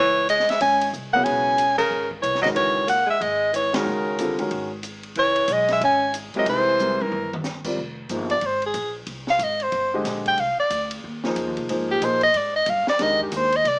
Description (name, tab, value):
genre	modal jazz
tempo	184 BPM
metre	4/4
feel	swing 62% on 8ths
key	C# dorian, F dorian from 7.8 s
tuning	A4 = 440 Hz
part	clear soprano saxophone	melody	0.0-13.8 s	G4 to G#5	-19 LUFS	equal	none
part	breathy alto saxophone	second line	0.0-7.3 s	C#3 to C#4	-27 LUFS	equal	none
part	upright bass	bass	0.0-13.8 s	E1 to Bb2	-35 LUFS	equal	none
part	open jazz drum kit	drums	0.3-13.7 s	crash cymbal, hi-hat, kick drum, ride cymbal, snare drum, toms	-33 LUFS	equal	none
part	warm grand piano	accompaniment	1.1-13.5 s	C#3 to Eb5	-26 LUFS	equal	none
room	moderate studio reverb, RT60 0.7 s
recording	small speaker sound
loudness	-19 LUFS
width	side -32 dB against mid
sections	0.0-7.8 A section; 7.8-13.8 B section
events	band accent 1.8, 3.7; drum fill 6.8-7.5; soprano saxophone solo 7.8-13.8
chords	0.0 C#m69; 6.5 C7b13; 7.8 Fm9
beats	0.29 0.61 0.94 | 1.26 1.59 1.91 2.24 | 2.56 2.89 3.22 3.54 | 3.87 4.19 4.52 4.84 | 5.17 5.49 5.82 6.15 | 6.47 6.80 7.12 7.45 | 7.78 8.10 8.43 8.76 | 9.08 9.41 9.73 10.06 | 10.39 10.71 11.04 11.37 | 11.69 12.02 12.35 12.67 | 13.00 13.33 13.65